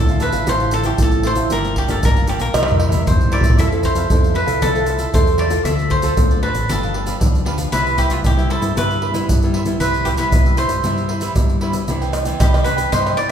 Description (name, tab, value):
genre	samba and choro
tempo	116 BPM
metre	4/4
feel	straight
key	C major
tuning	A4 = 439 Hz
part	cavaquinho	melody	0.0-13.3 s	F4 to E5	-22 LUFS	left 1 dB	none
part	nylon-string guitar	accompaniment	0.0-13.3 s	G2 to A4	-23 LUFS	equal	none
part	deep dub fingered electric bass	bass	0.0-13.1 s	G1 to G2	-23 LUFS	left 1 dB	none
part	cavaquinho	accompaniment	0.1-13.3 s	D4 to G5	-28 LUFS	right 4 dB	none
part	tube shaker, pandeiro, surdo and tamborim	percussion	0.1-13.3 s	none	-18 LUFS	equal	none
room	wet large studio reverb, RT60 1.3 s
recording	band playing live in one room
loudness	-15 LUFS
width	side -8 dB against mid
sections	0.0-11.9 A section; 11.9-13.3 B section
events	drum fill 2.5-3.6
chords	0.0 Dm9; 1.5 Gm7; 2.5 C7; 3.6 Fmaj7; 5.7 Dm7; 6.7 G7; 7.7 Cmaj7; 11.9 Cmaj9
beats	0.47 0.99 | 1.51 2.03 2.54 3.06 | 3.58 4.10 4.62 5.13 | 5.65 6.17 6.69 7.21 | 7.73 8.25 8.77 9.29 | 9.80 10.32 10.85 11.37 | 11.88 12.40 12.93